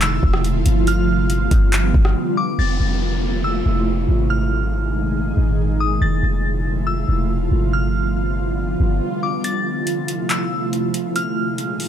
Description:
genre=hip hop, atmospheric cloud-rap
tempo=140 BPM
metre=4/4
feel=half-time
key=F lydian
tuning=A4 = 440 Hz
part: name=glassy synth bell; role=melody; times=0.0-11.9 s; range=D6 to A6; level=-26 LUFS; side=left 1 dB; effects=chorus, phaser, low-pass filter, ping-pong delay
part: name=ethereal airy pad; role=sustained chords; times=0.0-11.9 s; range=Bb2 to Ab4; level=-22 LUFS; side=right 1 dB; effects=ensemble chorus, built-in reverb, sidechain pumping
part: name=clean 808-style bass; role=bass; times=0.0-9.0 s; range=E1 to Ab1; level=-19 LUFS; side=equal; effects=none
part: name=smooth R&B drum kit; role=drums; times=0.0-2.1, 9.4-11.9 s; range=handclaps, hi-hat, kick drum, rim click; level=-21 LUFS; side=equal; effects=none
part: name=downlifter and swell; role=sound effects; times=2.6-9.4 s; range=none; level=-30 LUFS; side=right 1 dB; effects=none
room=little or no reverb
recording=none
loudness=-17 LUFS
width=side -9 dB against mid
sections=0.0-2.6 A section; 2.6-9.4 B section; 9.4-11.9 C section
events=break 2.2-2.6, 9.0-9.4; swell 8.5-9.4; kick muted 9.4-11.9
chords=0.0 Fmaj7; 0.9 G7; 2.6 Fmaj7; 4.3 Absus2; 6.0 Fmaj7; 7.7 G7; 9.4 Fmaj7; 11.2 Absus2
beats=0.01 0.44 | 0.87 1.30 1.73 2.16 | 2.58 3.01 3.44 3.87 | 4.30 4.73 5.16 5.58 | 6.01 6.44 6.87 7.30 | 7.73 8.16 8.59 9.01 | 9.44 9.87 10.30 10.73 | 11.16 11.59

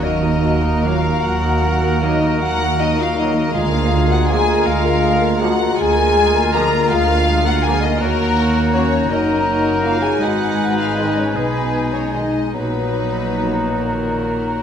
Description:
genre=classical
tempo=46-56 BPM (dotted quarters)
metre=12/8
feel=rubato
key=Eb minor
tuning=A4 = 440 Hz
part: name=rich studio violin section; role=melody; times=0.0-14.6 s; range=Bb4 to Bb5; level=-23 LUFS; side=left 4 dB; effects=none
part: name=clear oboe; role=second line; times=0.0-14.6 s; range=F4 to Cb5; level=-27 LUFS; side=right 1 dB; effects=none
part: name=small flute group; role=second line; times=0.0-14.6 s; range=Ab5 to Bb5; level=-26 LUFS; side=left 1 dB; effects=none
part: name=warm clarinet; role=second line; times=0.0-14.6 s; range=Eb4 to Gb4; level=-27 LUFS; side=left 3 dB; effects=none
part: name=warm studio violin section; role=second line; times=0.0-14.6 s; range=Bb4 to Bb5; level=-26 LUFS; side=left 3 dB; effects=none
part: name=mellow bassoon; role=accompaniment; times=0.0-14.6 s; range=Gb3 to Bb3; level=-28 LUFS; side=right 2 dB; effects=none
part: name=rich studio viola section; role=accompaniment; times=0.0-14.6 s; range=Eb3 to Bb4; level=-24 LUFS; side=equal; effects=none
part: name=dark French horn section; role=sustained chords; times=0.0-14.6 s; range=Bb3 to Bb4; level=-23 LUFS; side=left 3 dB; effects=none
part: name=warm studio cello section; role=bass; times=0.0-14.6 s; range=D2 to Cb3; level=-23 LUFS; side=right 3 dB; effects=none
part: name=warm studio double bass section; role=bass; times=0.0-14.6 s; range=Gb1 to Eb2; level=-23 LUFS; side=right 3 dB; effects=none
part: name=bright trombone section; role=sustained chords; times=0.8-13.5 s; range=Eb3 to Bb3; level=-30 LUFS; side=right 4 dB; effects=none
room=wet scoring stage reverb, RT60 1.7 s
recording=dark, warm production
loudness=-15 LUFS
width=side -8 dB against mid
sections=0.0-14.6 A section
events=none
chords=0.0 Ebm; 3.5 Bb7/D; 8.0 Ebm; 10.2 Abm; 12.5 Ebm/Bb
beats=0.03 1.23 2.40 | 3.54 4.66 5.78 6.91 | 8.01 9.11 10.22 11.36 | 12.54 13.82

